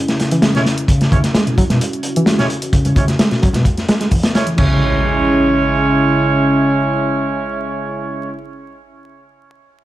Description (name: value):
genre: breakbeat, breaks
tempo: 130 BPM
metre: 4/4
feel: straight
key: C# minor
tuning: A4 = 441 Hz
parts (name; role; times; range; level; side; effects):
- phased analog pad; sustained chords; 0.0-8.3 s; C#3 to G#4; -19 LUFS; equal; phaser, chorus, sidechain pumping
- crunchy breakbeat drum kit; drums; 0.1-4.7 s; crash cymbal, hi-hat, kick drum, snare drum; -16 LUFS; equal; none
- electronic hi-hat; drums; 0.1-4.6 s; none; -31 LUFS; left 1 dB; none
- reed electric piano; riff; 0.3-4.8 s; B2 to B3; -18 LUFS; equal; fast tremolo, low-pass filter
- warm horn section; stabs; 0.5-8.3 s; G#3 to C#5; -19 LUFS; right 3 dB; vintage 12-bit sampler grit, low-pass filter, dub echo
- congas; percussion; 1.1-3.6 s; none; -23 LUFS; right 2 dB; none
- impact; sound effects; 4.6-8.4 s; none; -23 LUFS; equal; none
room: wet studio reverb, RT60 0.6 s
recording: dark, warm production, vinyl crackle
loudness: -13 LUFS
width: side -15 dB against mid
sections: 0.0-4.6 A section; 4.6-8.3 B section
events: filter sweep on reed electric piano 0.0-4.6; filter sweep on horn section 0.0-4.6; filter sweep on analog synth pad 0.0-4.6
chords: 0.0 C#m